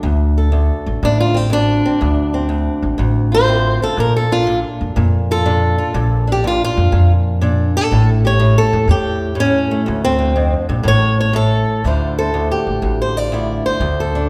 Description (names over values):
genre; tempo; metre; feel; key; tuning
acoustic country blues, solo or duo; 122 BPM; 4/4; swing 68% on 8ths; D minor; A4 = 440 Hz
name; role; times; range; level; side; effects
fingerpicked swing-style acoustic guitar; melody; 0.0-14.3 s; D2 to D5; -18 LUFS; equal; none
upright bass; bass; 0.0-14.3 s; A1 to F2; -19 LUFS; equal; none
room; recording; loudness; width
moderate scoring stage reverb, RT60 1.8 s; recorded in a church or concert hall; -16 LUFS; mono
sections
0.0-11.8 A section; 11.8-14.3 B section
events
steel-string acoustic guitar solo 0.0-11.8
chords
0.0 Dm7; 4.0 Bbmaj7; 7.9 A7; 9.9 Dm7; 10.8 A; 11.8 Dm9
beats
| 0.04 0.53 1.02 1.52 | 2.01 2.50 2.99 3.48 | 3.98 4.47 4.96 5.45 | 5.94 6.43 6.92 7.42 | 7.91 8.40 8.89 9.38 | 9.87 10.36 10.85 11.34 | 11.83 12.32 12.82 13.31 | 13.80